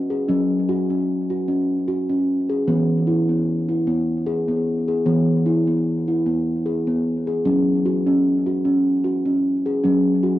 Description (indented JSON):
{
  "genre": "world meditative, meditative tuned percussion",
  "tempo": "75 BPM",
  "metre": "3/4",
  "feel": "swing 54% on 16ths",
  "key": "E major pentatonic",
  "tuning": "A4 = 440 Hz",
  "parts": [
    { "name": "steel tongue drum", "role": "solo", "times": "0.0-10.4 s", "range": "E3 to G#4", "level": "-18 LUFS", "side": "equal", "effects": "cassette tape, analog delay" }
  ],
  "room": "wet studio reverb, RT60 0.6 s",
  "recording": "home recording on cassette",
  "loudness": "-18 LUFS",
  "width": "side -14 dB against mid",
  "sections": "0.0-10.4 A section",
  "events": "none",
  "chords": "0.0 F#5; 2.7 E; 7.5 F#5"
}